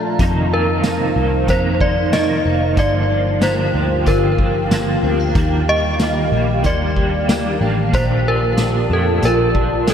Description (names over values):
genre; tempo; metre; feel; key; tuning
dream pop; 93 BPM; 4/4; straight; G minor; A4 = 440 Hz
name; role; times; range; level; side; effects
ethereal airy pad; sustained chords; 0.0-9.9 s; Eb3 to Bb5; -22 LUFS; equal; ensemble chorus, built-in reverb
direct-recorded clean electric guitar; arpeggios; 0.0-9.9 s; F2 to Eb4; -24 LUFS; left 2 dB; ensemble chorus, tape echo
clean electric guitar; accompaniment; 0.2-9.9 s; F2 to Eb4; -24 LUFS; right 2 dB; tremolo, ensemble chorus
vintage muted picked electric bass; bass; 0.2-9.9 s; F1 to F2; -20 LUFS; equal; none
vintage drum kit; drums; 0.2-9.9 s; hi-hat, kick drum, snare drum, tambourine; -22 LUFS; equal; none
synth chime; melody; 0.5-9.9 s; A4 to Eb5; -20 LUFS; equal; ensemble chorus, tape echo
room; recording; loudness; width
wet lush hall reverb, RT60 2.9 s; dreamy mix soaked in reverb; -14 LUFS; side -8 dB against mid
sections
0.0-9.9 A section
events
none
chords
0.2 F7sus4; 2.8 Gm7; 5.4 Ebmaj7; 7.9 Bbmaj7